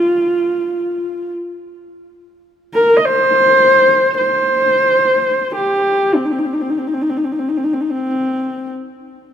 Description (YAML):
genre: mongolian traditional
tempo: free time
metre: none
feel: none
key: C yu mode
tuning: A4 = 441 Hz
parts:
  - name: dark horsehead fiddle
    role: solo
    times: 0.0-8.7 s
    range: C4 to Eb5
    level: -13 LUFS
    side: equal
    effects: none
room: moderate huge ambient reverb, RT60 4.1 s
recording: minimal, uncompressed stereo recording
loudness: -13 LUFS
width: side -9 dB against mid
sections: 0.0-9.2 A section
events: none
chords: none